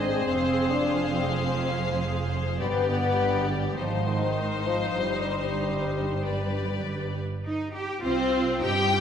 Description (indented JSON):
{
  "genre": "classical, dramatic, fast romantic movement for symphony orchestra",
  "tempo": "95-105 BPM",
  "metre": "4/4",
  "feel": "rubato",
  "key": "C minor",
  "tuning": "A4 = 440 Hz",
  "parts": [
    { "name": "rich symphonic violin section", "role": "melody", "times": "0.0-9.0 s", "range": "C5 to G5", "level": "-34 LUFS", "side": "left 5 dB", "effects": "none" },
    { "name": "clear symphonic violin section", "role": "second line", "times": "0.0-9.0 s", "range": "C4 to C5", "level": "-31 LUFS", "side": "left 3 dB", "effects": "none" },
    { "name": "rich symphonic viola section", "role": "accompaniment", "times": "0.0-9.0 s", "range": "C4 to Ab4", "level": "-34 LUFS", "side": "right 1 dB", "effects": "none" },
    { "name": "mellow French horn section", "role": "sustained chords", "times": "0.0-6.9 s", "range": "Eb3 to D4", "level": "-28 LUFS", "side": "left 2 dB", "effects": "none" },
    { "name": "rich symphonic cello section", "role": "bass", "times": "0.0-9.0 s", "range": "F2 to G4", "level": "-32 LUFS", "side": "right 2 dB", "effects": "none" },
    { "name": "rich symphonic double bass section", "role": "bass", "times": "0.0-9.0 s", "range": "F1 to G2", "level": "-32 LUFS", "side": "right 4 dB", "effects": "none" }
  ],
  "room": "wet concert hall reverb, RT60 2.0 s",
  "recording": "none",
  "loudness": "-24 LUFS",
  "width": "side -8 dB against mid",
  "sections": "0.0-7.5 A section; 7.5-9.0 B section",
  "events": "none",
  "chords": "0.3 Fm; 2.6 G; 3.8 Ab; 5.0 Cm/G; 6.2 G; 7.5 Cm",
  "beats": "| 0.27 0.85 1.43 2.01 | 2.60 3.19 3.77 4.37 | 4.98 5.61 6.24 6.86 | 7.46 8.03 8.61"
}